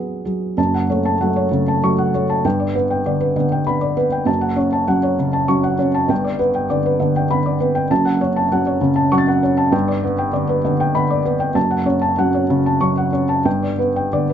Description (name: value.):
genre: neoclassical minimalist piano.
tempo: 98 BPM.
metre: 3/4.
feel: rubato.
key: unclear.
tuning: A4 = 440 Hz.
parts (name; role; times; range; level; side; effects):
felt-muted upright piano; solo; 0.0-14.3 s; F#1 to A6; -15 LUFS; equal; none.
room: light reverb.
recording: nothing above 7.6 kHz.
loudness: -15 LUFS.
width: side -9 dB against mid.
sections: 0.6-14.3 A section.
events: none.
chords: 0.0 Eadd9; 0.6 F#m; 2.4 G; 4.3 F#m; 6.1 G; 7.9 F#m; 9.7 G; 11.6 F#m; 13.5 G.